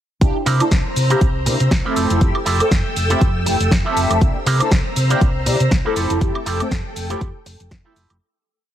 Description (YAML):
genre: filtered disco house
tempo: 120 BPM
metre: 4/4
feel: swing 56% on 16ths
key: F major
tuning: A4 = 441 Hz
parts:
  - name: mellow synth brass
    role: accompaniment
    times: 0.2-7.9 s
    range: A3 to E5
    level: -22 LUFS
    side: left 1 dB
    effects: chorus, phaser, sidechain pumping
  - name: string machine, full ensemble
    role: sustained chords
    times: 0.2-8.2 s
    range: A4 to E6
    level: -25 LUFS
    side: equal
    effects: ensemble chorus, sidechain pumping
  - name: hollow-body short-scale fingered electric bass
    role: bass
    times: 0.2-8.2 s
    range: F1 to C3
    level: -20 LUFS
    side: equal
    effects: sidechain pumping
  - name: electronic kick drum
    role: drums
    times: 0.2-7.8 s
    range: none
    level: -17 LUFS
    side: equal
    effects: none
  - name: house drum kit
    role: drums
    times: 0.2-8.2 s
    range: cabasa, hi-hat, snare drum, woodblock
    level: -24 LUFS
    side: equal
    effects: sidechain pumping on hats, sidechain pumping on perc
  - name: electric guitar with an envelope filter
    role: riff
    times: 0.5-8.2 s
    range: C4 to Bb4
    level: -24 LUFS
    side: right 5 dB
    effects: sidechain pumping
room: light reverb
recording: heavily compressed radio sound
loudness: -15 LUFS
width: side -11 dB against mid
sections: 0.2-8.2 drop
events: drop 0.2-8.2; fade-out 5.5-8.2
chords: 0.2 C7; 2.0 Fmaj9; 4.2 C7; 6.0 Fmaj9